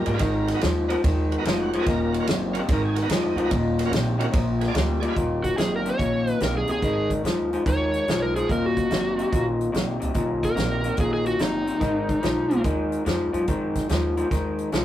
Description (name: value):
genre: electric blues shuffle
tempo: 144 BPM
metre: 4/4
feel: swing 67% on 8ths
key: Eb minor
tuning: A4 = 440 Hz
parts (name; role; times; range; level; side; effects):
- bright tonewheel organ; accompaniment; 0.0-5.2 s; Cb4 to D5; -31 LUFS; right 4 dB; slow rotary speaker, overdrive
- electric guitar through a small old amp; riff; 0.0-14.8 s; Eb2 to G3; -24 LUFS; left 2 dB; spring reverb
- upright bass; bass; 0.1-14.8 s; Eb1 to Ab2; -28 LUFS; right 1 dB; none
- natural country drum kit; drums; 0.1-14.8 s; hi-hat, kick drum, ride cymbal, snare drum; -27 LUFS; right 1 dB; none
- overdriven slide guitar; melody; 5.4-12.6 s; Eb4 to Db5; -25 LUFS; equal; none
room: light reverb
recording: rough rehearsal-room recording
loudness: -21 LUFS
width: side -12 dB against mid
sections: 0.0-5.2 A section; 5.2-14.8 B section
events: none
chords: 0.2 Abm9; 1.9 Ebm9; 2.7 Abm9; 3.5 Ebm9; 4.3 Bb7b9; 5.2 Ebm7; 6.8 Abm; 8.5 Ebm; 11.8 Abm